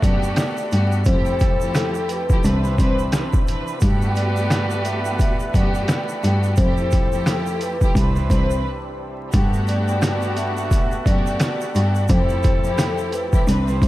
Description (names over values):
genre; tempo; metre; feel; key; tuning
hip hop, boom-bap hip-hop; 87 BPM; 4/4; swing 60% on 16ths; G major; A4 = 442 Hz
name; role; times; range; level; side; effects
vibraphone with soft mallets; melody; 0.0-13.9 s; A4 to E5; -27 LUFS; left 2 dB; high-pass filter, low-pass filter, diffuse ambient delay
warm studio string section; accompaniment; 0.0-13.9 s; E3 to B4; -26 LUFS; equal; cassette tape, high-pass filter, low-pass filter
overdriven tonewheel organ; sustained chords; 0.0-13.9 s; C3 to F#5; -34 LUFS; equal; lush chorus, high-pass filter, low-pass filter
warm horn section; stabs; 0.0-13.9 s; B3 to C5; -32 LUFS; right 3 dB; high-pass filter, low-pass filter, diffuse ambient delay
dark cello; bass; 0.0-13.9 s; C2 to G2; -21 LUFS; equal; none
trip hop sampler-style drum kit; drums; 0.0-13.9 s; hi-hat, kick drum, rim click, snare drum; -20 LUFS; equal; overdrive
egg shaker; percussion; 0.0-13.9 s; none; -42 LUFS; right 7 dB; none
room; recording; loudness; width
small room ambience; vinyl crackle; -17 LUFS; side -16 dB against mid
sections
0.0-13.9 A section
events
break 8.6-9.3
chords
0.0 Gmaj9; 1.1 Fmaj9; 2.4 Cmaj9; 3.8 Gmaj9; 6.6 Fmaj9; 8.0 Cmaj9; 9.3 Gmaj9; 12.1 Fmaj9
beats
0.37 | 1.06 1.75 2.44 3.13 | 3.82 4.51 5.20 5.89 | 6.58 7.27 7.96 8.65 | 9.34 10.03 10.71 11.40 | 12.09 12.78 13.47